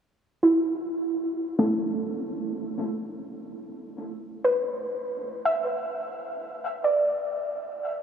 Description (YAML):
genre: ambient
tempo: free time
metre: none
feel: none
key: unclear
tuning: A4 = 440 Hz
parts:
  - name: soft round pluck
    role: solo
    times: 0.4-8.0 s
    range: A3 to E5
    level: -25 LUFS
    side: right 1 dB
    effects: analog chorus, diffuse ambient delay
room: wet huge ambient reverb, RT60 8.0 s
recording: dreamy mix soaked in reverb, studio reverb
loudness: -25 LUFS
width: side -8 dB against mid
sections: 0.0-8.0 A section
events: none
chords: 0.0 N.C.; 1.5 Asus2; 5.1 Bmadd11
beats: free time